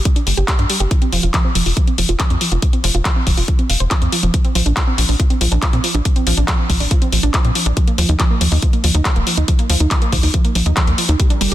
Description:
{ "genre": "uplifting trance", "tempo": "140 BPM", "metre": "4/4", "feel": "straight", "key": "unclear", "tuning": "A4 = 441 Hz", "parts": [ { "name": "wide unison pluck", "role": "arpeggios", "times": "0.1-11.5 s", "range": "F3 to F5", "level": "-22 LUFS", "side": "right 4 dB", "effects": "sidechain pumping, ping-pong delay" }, { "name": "electronic kick drum", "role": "drums", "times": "0.1-11.3 s", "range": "none", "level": "-16 LUFS", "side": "equal", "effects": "none" }, { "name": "house drum kit", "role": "drums", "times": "0.1-11.5 s", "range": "handclaps, hi-hat", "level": "-20 LUFS", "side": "left 2 dB", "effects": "none" }, { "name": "tight sequencer bass", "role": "bass", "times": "0.3-11.5 s", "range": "Eb1 to Bb2", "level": "-16 LUFS", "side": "equal", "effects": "sidechain pumping" }, { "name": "analog string pad", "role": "sustained chords", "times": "11.2-11.5 s", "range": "D4 to Bb4", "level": "-32 LUFS", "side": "right 1 dB", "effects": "ensemble chorus, sidechain pumping" } ], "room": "digital ambience", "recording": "dense, heavily limited modern master", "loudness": "-13 LUFS", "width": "side -13 dB against mid", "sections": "0.0-11.5 A section", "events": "filter sweep on synth arpeggio sound 0.0-11.5", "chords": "0.0 G5; 0.9 F5; 4.3 Bbadd9; 7.8 Ebsus2" }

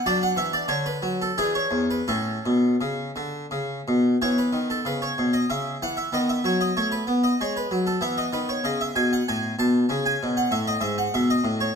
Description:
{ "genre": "classical, baroque-style suite movement for harpsichord", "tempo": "81-99 BPM", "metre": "3/4", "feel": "rubato", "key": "A major, E major from 4.2 s", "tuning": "A4 = 439 Hz", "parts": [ { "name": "harpsichord", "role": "solo", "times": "0.0-11.8 s", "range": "E2 to A5", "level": "-22 LUFS", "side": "equal", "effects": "none" } ], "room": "moderate recital hall reverb, RT60 1.3 s", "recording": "close, detailed microphones", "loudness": "-22 LUFS", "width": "side -6 dB against mid", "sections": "0.0-4.2 A section; 4.2-11.8 A section", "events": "none", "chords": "0.1 D; 1.4 E7; 2.1 A; 4.2 E5; 6.1 B7/D#; 8.0 E5; 9.9 C#5" }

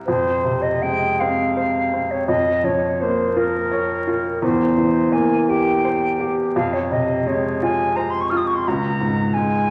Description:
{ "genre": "classical, romantic duo for flute and grand piano", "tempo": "56 BPM (dotted quarters)", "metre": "6/8", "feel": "rubato", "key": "F minor", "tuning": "A4 = 438 Hz", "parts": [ { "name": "clear baby grand piano", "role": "accompaniment", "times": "0.0-9.7 s", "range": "Db2 to Db5", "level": "-22 LUFS", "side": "equal", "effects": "none" }, { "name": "silver concert flute", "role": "melody", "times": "0.1-9.7 s", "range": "Bb4 to F6", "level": "-23 LUFS", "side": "equal", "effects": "none" } ], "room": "wet recital hall reverb, RT60 1.6 s", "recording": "vinyl crackle", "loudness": "-20 LUFS", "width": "mono", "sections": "0.1-9.7 A section", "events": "none", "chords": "0.1 Fm; 2.3 Bbm/F; 4.4 C7/E; 6.5 Fm; 8.7 Db5" }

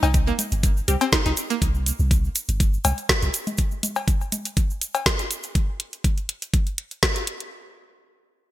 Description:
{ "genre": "minimal techno", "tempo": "122 BPM", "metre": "4/4", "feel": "swing 53% on 16ths", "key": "C minor", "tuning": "A4 = 442 Hz", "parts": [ { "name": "string-like resonator pluck", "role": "riff", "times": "0.0-1.6 s", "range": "Bb3 to Eb4", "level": "-26 LUFS", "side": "right 1 dB", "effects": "chorus, cassette tape, sidechain pumping, digital delay" }, { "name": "punchy sub bass", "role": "bass", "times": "0.0-3.3 s", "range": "G1 to C2", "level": "-23 LUFS", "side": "equal", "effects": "sidechain pumping" }, { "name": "cabasa", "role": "percussion", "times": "0.0-5.5 s", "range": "none", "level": "-30 LUFS", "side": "right 2 dB", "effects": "none" }, { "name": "cowbell and congas", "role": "percussion", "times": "0.0-5.0 s", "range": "none", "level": "-28 LUFS", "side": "left 5 dB", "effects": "ping-pong delay" }, { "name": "electronic kick drum", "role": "drums", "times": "0.1-7.1 s", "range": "none", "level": "-22 LUFS", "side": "equal", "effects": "none" }, { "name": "garage drum kit", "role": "drums", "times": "0.1-7.5 s", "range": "hi-hat, snare drum", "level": "-24 LUFS", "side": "equal", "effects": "gated reverb" }, { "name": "wavetable chord stab", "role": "stabs", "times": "0.9-1.0 s", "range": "G3 to G4", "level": "-30 LUFS", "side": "left 2 dB", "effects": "ping-pong delay" } ], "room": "little or no reverb", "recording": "bright 1980s-style digital production", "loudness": "-20 LUFS", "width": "side -14 dB against mid", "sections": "0.0-7.5 A section", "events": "drop 0.0-7.5", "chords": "0.0 C5" }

